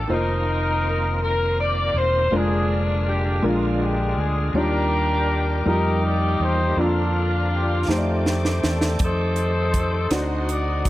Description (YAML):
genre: slow gospel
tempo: 54 BPM (dotted quarters)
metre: 6/8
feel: straight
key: unclear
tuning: A4 = 439 Hz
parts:
  - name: mellow horn section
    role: melody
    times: 0.0-10.9 s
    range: Ab3 to D5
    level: -24 LUFS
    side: left 2 dB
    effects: none
  - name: clear grand piano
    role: accompaniment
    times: 0.0-10.9 s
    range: Bb2 to G5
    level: -27 LUFS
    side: equal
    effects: none
  - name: bright tonewheel organ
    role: sustained chords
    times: 0.0-10.9 s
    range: D3 to D5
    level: -31 LUFS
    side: right 2 dB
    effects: slow rotary speaker, overdrive, chorus vibrato
  - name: fingered electric bass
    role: bass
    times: 0.0-10.9 s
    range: E1 to F2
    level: -23 LUFS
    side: equal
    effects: none
  - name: tight funk drum kit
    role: drums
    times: 7.9-10.9 s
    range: hi-hat, kick drum, snare drum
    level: -24 LUFS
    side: right 1 dB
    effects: none
room: light reverb, small room ambience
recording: none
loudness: -19 LUFS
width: side -15 dB against mid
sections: 0.1-10.9 A section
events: drum fill 7.9-9.0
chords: 0.1 F7sus4; 2.3 Bb7/F; 3.4 Bb7; 4.5 Ebmaj9; 5.7 F9sus4; 6.8 Bb/F; 7.9 F13; 10.1 D7b9